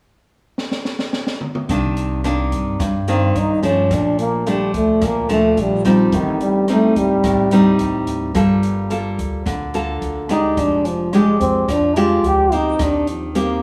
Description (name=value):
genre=bossa nova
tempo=108 BPM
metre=4/4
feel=straight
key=G minor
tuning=A4 = 440 Hz
part: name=open jazz drum kit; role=drums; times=0.6-13.5 s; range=hi-hat, kick drum, rim click, snare drum, toms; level=-30 LUFS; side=equal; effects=none
part: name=nylon-string guitar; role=accompaniment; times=1.7-13.6 s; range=G2 to A4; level=-21 LUFS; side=equal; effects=none
part: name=upright bass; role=bass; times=1.7-13.6 s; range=F1 to G2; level=-26 LUFS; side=equal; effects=none
part: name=breathy trombone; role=melody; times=3.1-13.6 s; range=Eb3 to G4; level=-20 LUFS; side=equal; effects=plate reverb
room=wet studio reverb, RT60 1.0 s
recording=heard from further back in the room, small room ambience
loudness=-18 LUFS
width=mono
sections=0.0-1.7 A section; 1.7-13.6 B section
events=drum fill 0.6-1.7; trombone solo 1.7-13.6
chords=0.0 N.C.; 1.7 Cm9; 3.9 Gm9/Bb; 6.1 Am7b5; 8.4 Gm9; 10.6 Bb13/F; 12.8 Eb6